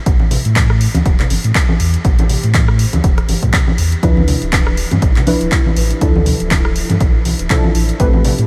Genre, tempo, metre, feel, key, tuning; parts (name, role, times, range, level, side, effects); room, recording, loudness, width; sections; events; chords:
deep house; 121 BPM; 4/4; swing 56% on 16ths; D dorian; A4 = 440 Hz
granular cloud pad; texture; 0.0-8.5 s; F3 to B5; -39 LUFS; equal
sub bass with octave; bass; 0.1-8.5 s; D1 to A2; -19 LUFS; equal; sidechain pumping
deep house drum kit; drums; 0.1-8.5 s; handclaps, hi-hat, rim click; -24 LUFS; equal
electronic kick drum; drums; 0.1-8.1 s; -17 LUFS; equal
congas; percussion; 0.2-8.4 s; -23 LUFS; equal
deep mellow chord stab; stabs; 4.0-8.5 s; F3 to B4; -21 LUFS; equal; chorus, sidechain pumping, analog delay
light reverb; vinyl crackle; -14 LUFS; mono
0.0-8.5 A section
0.1 Am9; 4.0 Dm69